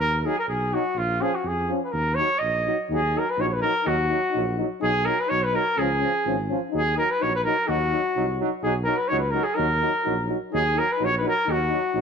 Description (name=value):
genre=balkan folk, Balkan brass band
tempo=126 BPM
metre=2/4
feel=swing 53% on 16ths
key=Eb minor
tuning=A4 = 439 Hz
part: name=mellow trumpet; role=melody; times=0.0-12.0 s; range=F4 to Eb5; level=-23 LUFS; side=equal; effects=none
part: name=dark tuba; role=bass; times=0.0-12.0 s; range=Ab1 to F2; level=-28 LUFS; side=equal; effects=none
part: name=clear trombone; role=accompaniment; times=0.2-12.0 s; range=F3 to F#3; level=-31 LUFS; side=right 12 dB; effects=none
part: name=warm euphonium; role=accompaniment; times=0.3-12.0 s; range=Db4 to Eb4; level=-30 LUFS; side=left 12 dB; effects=none
room=moderate echo chamber reverb, RT60 1.7 s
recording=1960s-style stereo with parts hard left and right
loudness=-21 LUFS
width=side -6 dB against mid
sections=0.0-2.9 A section; 2.9-10.5 B section; 10.5-12.0 B section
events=none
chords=0.0 Ebm; 1.0 Bbm; 1.9 Ebm; 4.8 B; 5.8 Db; 6.7 Ebm; 8.6 B; 9.6 Ebm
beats=| 0.01 0.49 | 0.98 1.46 | 1.94 2.42 | 2.91 3.39 | 3.87 4.34 | 4.82 5.30 | 5.78 6.26 | 6.73 7.21 | 7.69 8.16 | 8.64 9.11 | 9.58 10.06 | 10.53 11.00 | 11.47 11.94